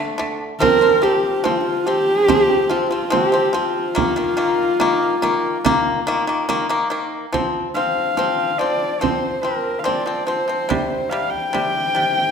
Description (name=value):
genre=mongolian traditional, Mongolian folk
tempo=71 BPM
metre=4/4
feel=straight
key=F zhi mode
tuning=A4 = 440 Hz
part: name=dark horsehead fiddle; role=melody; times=0.0-12.3 s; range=D4 to G5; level=-19 LUFS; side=equal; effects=none
part: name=pipa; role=arpeggios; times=0.0-12.3 s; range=C3 to C4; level=-21 LUFS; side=left 2 dB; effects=none
part: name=frame drum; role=percussion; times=0.2-12.1 s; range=none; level=-25 LUFS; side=right 6 dB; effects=none
room=wet recital hall reverb, RT60 1.4 s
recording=none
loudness=-16 LUFS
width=side -6 dB against mid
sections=0.0-7.3 A section; 7.3-12.3 B section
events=none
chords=0.0 D5; 0.6 F5; 4.0 Eb5; 7.3 F5; 10.7 C5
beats=| 0.61 1.45 2.29 3.13 | 3.98 4.82 5.66 6.50 | 7.34 8.18 9.02 9.86 | 10.70 11.54